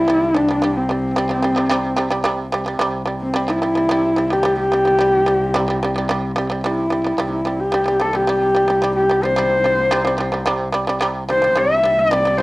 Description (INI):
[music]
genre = mongolian traditional, Mongolian folk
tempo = 110 BPM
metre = 4/4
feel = straight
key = C gong mode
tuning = A4 = 440 Hz
[part]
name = dark horsehead fiddle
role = melody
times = 0.0-12.4 s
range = C4 to E5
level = -17 LUFS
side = left 1 dB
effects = cassette tape
[part]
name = shamisen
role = arpeggios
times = 0.0-12.4 s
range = C3 to G3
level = -21 LUFS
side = right 2 dB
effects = cassette tape
[part]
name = dark cello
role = drone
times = 0.0-12.4 s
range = C2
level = -26 LUFS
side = left 1 dB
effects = cassette tape
[sound]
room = moderate studio reverb, RT60 0.6 s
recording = home recording on cassette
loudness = -16 LUFS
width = side -21 dB against mid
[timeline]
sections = 0.0-12.4 A section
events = none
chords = 0.0 C5